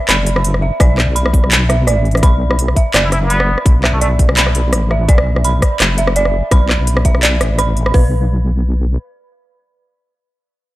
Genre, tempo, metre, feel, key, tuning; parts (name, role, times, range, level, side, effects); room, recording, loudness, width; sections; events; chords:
half-time drum and bass; 168 BPM; 4/4; swing 54% on 16ths, half-time; A4 = 442 Hz
dark detuned synth bell; arpeggios; 0.0-8.1 s; B4 to B5; -20 LUFS; right 3 dB; chorus, analog delay
deep soft wobble bass; bass; 0.1-9.0 s; F#1 to B1; -15 LUFS; equal; chorus
drum and bass drum kit; drums; 0.1-7.9 s; handclaps, hi-hat, rim click; -16 LUFS; equal; small room ambience
drum and bass drum kit; drums; 0.8-8.0 s; hi-hat, kick drum; -11 LUFS; equal; small room ambience
trumpet with plunger mute; melody; 3.0-4.1 s; A3 to E4; -22 LUFS; equal; tape echo
little or no reverb; dry, gritty hardware recording; -11 LUFS; side -16 dB against mid
0.0-7.9 A section; 7.9-10.8 B section
drop 0.0-7.9
0.0 B5; 7.9 N.C.